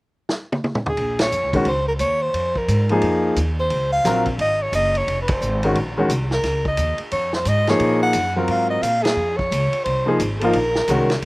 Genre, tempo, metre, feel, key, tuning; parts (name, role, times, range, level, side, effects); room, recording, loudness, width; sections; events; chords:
modal jazz; 176 BPM; 4/4; swing 63% on 8ths; Bb minor; A4 = 439 Hz
vintage drum kit; drums; 0.3-11.2 s; hi-hat, kick drum, ride cymbal, snare drum, toms; -27 LUFS; equal
breathy soprano saxophone; melody; 0.9-11.2 s; Ab4 to Gb5; -21 LUFS; equal; slapback echo
upright bass; bass; 1.0-11.2 s; F1 to Bb2; -24 LUFS; equal
clear baby grand piano; accompaniment; 1.5-11.1 s; Eb3 to Bb4; -20 LUFS; left 1 dB
little or no reverb; recorded outdoors, with no room sound; -18 LUFS; side -22 dB against mid
1.0-11.2 A section
drum fill 0.3-1.0; band accent 1.2, 5.2, 9.0
0.0 N.C.; 1.0 Bbm9